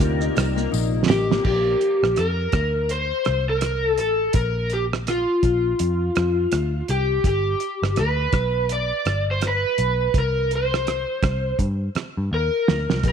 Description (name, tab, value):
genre	indie pop, bedroom pop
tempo	83 BPM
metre	4/4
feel	swing 60% on 16ths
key	Bb major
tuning	A4 = 440 Hz
part	overdriven slide guitar	melody	0.0-13.1 s	F4 to D5	-22 LUFS	left 1 dB	lush chorus, slapback echo
part	chorused retro synth keys	accompaniment	0.0-1.5 s	Eb4 to D5	-37 LUFS	right 14 dB	cassette tape
part	nylon-string guitar	accompaniment	0.0-2.0, 13.0-13.1 s	Bb2 to G4	-28 LUFS	left 12 dB	analog chorus, warbly pitch drift
part	warbly tape-like pad	sustained chords	0.0-1.4 s	Bb3 to D5	-33 LUFS	right 2 dB	chorus, built-in reverb
part	vintage muted picked electric bass	bass	0.0-13.1 s	G1 to G2	-24 LUFS	equal	none
part	cloth-damped thuddy drum kit	drums	0.0-13.1 s	crash cymbal, hi-hat, kick drum, rim click, shaker, snare drum	-23 LUFS	right 3 dB	none
part	tambourine	percussion	0.0-1.3 s	none	-38 LUFS	left 17 dB	none
room	light reverb, small room ambience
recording	1960s-style stereo with parts hard left and right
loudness	-19 LUFS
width	side -7 dB against mid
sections	0.0-1.4 A section; 1.4-13.1 B section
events	drum fill 0.7-1.4, 12.3-13.0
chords	0.0 Cm11; 7.2 G; 10.1 C7(no3)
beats	0.00 0.72 | 1.45 2.17 2.90 3.62 | 4.35 5.07 5.79 6.52 | 7.24 7.97 8.69 9.42 | 10.14 10.87 11.59 12.31 | 13.04